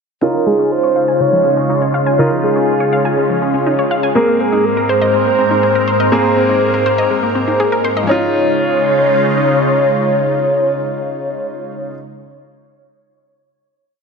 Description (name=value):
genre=dance-pop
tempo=122 BPM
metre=4/4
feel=straight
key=Db major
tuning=A4 = 440 Hz
part: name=warm velvety synth lead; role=melody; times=0.2-11.9 s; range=Ab4 to Db5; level=-16 LUFS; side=equal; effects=chorus, low-pass filter
part: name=clear concert grand piano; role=accompaniment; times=0.2-11.9 s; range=Bb3 to Ab4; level=-19 LUFS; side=equal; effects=low-pass filter
part: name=lush unison pad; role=sustained chords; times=0.6-11.9 s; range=Ab2 to Bb4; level=-17 LUFS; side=equal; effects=chorus, phaser, low-pass filter
part: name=wide unison pluck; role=arpeggios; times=0.2-12.0 s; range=Db3 to Ab5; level=-21 LUFS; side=left 2 dB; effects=low-pass filter, ping-pong delay
room=moderate lush hall reverb, RT60 2.2 s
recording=none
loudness=-12 LUFS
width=side -5 dB against mid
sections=0.2-8.1 breakdown; 8.1-12.0 final chord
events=filter sweep 0.2-8.1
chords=0.2 Dbadd9; 4.2 Abadd9; 8.1 Dbadd9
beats=| 0.22 0.71 1.20 1.70 | 2.19 2.68 3.17 3.66 | 4.16 4.65 5.14 5.63 | 6.12 6.61 7.11 7.60 | 8.09 8.58 9.07 9.56 | 10.06 10.55 11.04 11.53